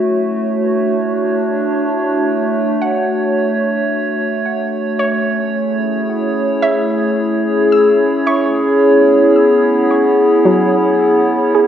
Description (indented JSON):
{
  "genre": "ambient",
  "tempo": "55 BPM",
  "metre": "4/4",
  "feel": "straight",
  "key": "unclear",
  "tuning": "A4 = 440 Hz",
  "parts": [
    { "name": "warbly tape-like pad", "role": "sustained chords", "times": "0.0-11.7 s", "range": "A3 to C#5", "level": "-12 LUFS", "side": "equal", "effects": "chorus, built-in reverb" },
    { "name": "soft round pluck", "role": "arpeggios", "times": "0.0-11.7 s", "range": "F#3 to E6", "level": "-20 LUFS", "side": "right 2 dB", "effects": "chorus, analog delay" }
  ],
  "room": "wet spring reverb, RT60 2.2 s",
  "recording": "echo-heavy mix",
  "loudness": "-12 LUFS",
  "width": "side -10 dB against mid",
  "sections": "0.0-11.7 A section",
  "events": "fade-in on synth pluck 0.0-11.7",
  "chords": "0.1 Dmaj7; 4.5 Amaj7; 8.8 C#m7"
}